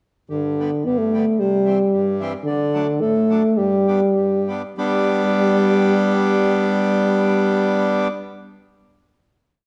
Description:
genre	alpine folk, alpine dance band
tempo	94-111 BPM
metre	2/4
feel	swing 54% on 8ths, rubato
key	G major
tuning	A4 = 442 Hz
part	mellow euphonium	melody	0.3-8.1 s	D3 to B3	-20 LUFS	equal	none
part	accordion	accompaniment	0.3-8.1 s	G2 to D4	-24 LUFS	equal	none
room	wet recital hall reverb, RT60 1.4 s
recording	none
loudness	-19 LUFS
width	mono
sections	0.3-4.8 A section; 4.8-7.3 final chord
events	slowing down 2.5-4.8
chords	0.3 G; 1.4 C; 2.5 D; 3.6 G

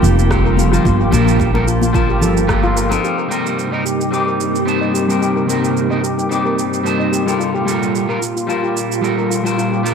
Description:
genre	sunset chillout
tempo	110 BPM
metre	4/4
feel	swing 54% on 16ths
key	unclear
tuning	A4 = 436 Hz
part	electric guitar at the edge of break-up	accompaniment	0.0-9.9 s	G3 to D6	-19 LUFS	moving between left 4 dB and right 3 dB	auto-pan, analog delay
part	soft string machine	sustained chords	0.0-9.9 s	G2 to A5	-20 LUFS	equal	ensemble chorus
part	steel pan	arpeggios	0.0-9.8 s	F4 to Eb5	-23 LUFS	left 2 dB	low-pass filter, analog delay
part	upright bass	bass	0.0-3.0 s	F1 to Bb1	-16 LUFS	equal	none
part	electronic shaker and rim click	drums	0.0-9.9 s	none	-26 LUFS	right 4 dB	overdrive, small room ambience, analog delay
part	congas	percussion	0.0-3.0 s	none	-24 LUFS	left 2 dB	none
part	drifting glass-harmonics texture	texture	0.0-3.0 s	G4 to G5	-32 LUFS	left 2 dB	none
part	electronic kick drum	drums	0.3-2.6 s	none	-21 LUFS	equal	overdrive, small room ambience
room	moderate spring reverb, RT60 2.4 s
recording	echo-heavy mix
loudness	-14 LUFS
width	side -6 dB against mid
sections	0.0-3.0 A section; 3.0-9.9 B section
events	band accent 2.5; filter sweep on string machine 3.0-9.9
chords	0.0 Gm9; 3.0 Cm7/G; 7.4 Gm9

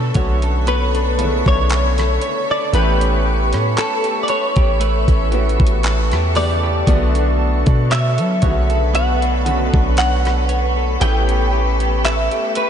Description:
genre	contemporary R&B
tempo	58 BPM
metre	4/4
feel	swing 54% on 16ths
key	B minor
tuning	A4 = 440 Hz
part	direct-recorded clean electric guitar	melody	0.0-12.7 s	A4 to G5	-21 LUFS	equal	ensemble chorus, analog delay
part	clear grand piano	accompaniment	0.0-12.7 s	C#3 to E5	-25 LUFS	left 1 dB	analog chorus
part	granular cloud pad	sustained chords	0.0-12.7 s	A4 to C#6	-23 LUFS	left 1 dB	built-in reverb, wide subtle chorus
part	direct-recorded clean electric guitar	arpeggios	0.0-12.7 s	A3 to C#5	-27 LUFS	right 7 dB	spring reverb, analog delay
part	warm 808-style bass	bass	0.0-12.3 s	A1 to F#3	-18 LUFS	equal	none
part	crisp 8-bit digital drum machine	drums	0.1-12.7 s	handclaps, hi-hat, kick drum, rim click	-20 LUFS	equal	overdrive
room	light reverb, digital ambience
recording	nothing above 10.3 kHz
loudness	-14 LUFS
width	side -8 dB against mid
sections	0.0-12.7 A section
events	none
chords	0.0 Bm9; 2.7 A9; 6.9 Bm9; 11.0 A9

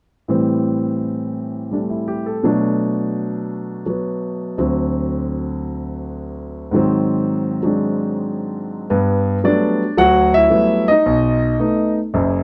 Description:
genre	solo jazz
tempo	111 BPM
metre	4/4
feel	swing 67% on 8ths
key	G major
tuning	A4 = 440 Hz
part	warm grand piano	solo	0.3-12.4 s	F#1 to F#5	-19 LUFS	equal	none
room	moderate studio reverb, RT60 0.6 s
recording	none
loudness	-19 LUFS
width	mono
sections	0.3-8.9 A section; 8.9-12.4 B section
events	none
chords	0.3 Am7; 2.4 Bm7; 4.6 D7; 6.7 Ab7; 8.9 Gmaj9; 11.1 B7

